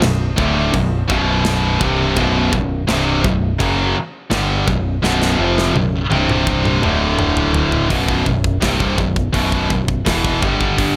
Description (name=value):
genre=heavy metal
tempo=84 BPM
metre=4/4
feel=straight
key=B minor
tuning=A4 = 439 Hz
part: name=scooped high-gain guitar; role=riff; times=0.0-11.0 s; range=B1 to G3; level=-21 LUFS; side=equal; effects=distortion
part: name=tight distorted guitar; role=riff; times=0.0-11.0 s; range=B1 to G3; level=-23 LUFS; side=equal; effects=distortion
part: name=growling picked electric bass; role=bass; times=0.0-11.0 s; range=B0 to G1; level=-24 LUFS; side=equal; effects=overdrive
part: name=tight metal drum kit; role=drums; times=0.0-11.0 s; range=china cymbal, hi-hat, kick drum, snare drum, toms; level=-24 LUFS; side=equal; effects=none
room=small room reverb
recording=none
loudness=-17 LUFS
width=mono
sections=0.0-7.9 A section; 7.9-11.0 B section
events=drum fill 5.0-7.9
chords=0.0 Bm; 6.1 C5; 6.8 D5; 7.9 B5; 10.4 G5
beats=0.02 0.73 1.45 | 2.16 2.88 3.60 4.31 | 5.03 5.75 6.46 7.18 | 7.90 8.62 9.34 10.06 | 10.78